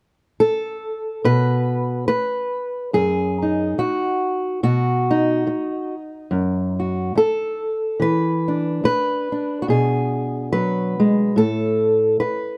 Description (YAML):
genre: folk, solo fingerstyle acoustic guitar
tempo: 71 BPM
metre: 4/4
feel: swing 56% on 8ths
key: B mixolydian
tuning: A4 = 439 Hz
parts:
  - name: fingerpicked old ladder-braced acoustic guitar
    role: solo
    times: 0.4-12.6 s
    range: F#2 to B4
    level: -21 LUFS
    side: equal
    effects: none
room: little or no reverb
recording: close, detailed microphones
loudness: -21 LUFS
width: mono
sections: 0.0-1.2 A section; 1.2-12.6 B section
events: none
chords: 0.0 N.C.; 1.2 B; 8.0 E7; 11.4 Asus2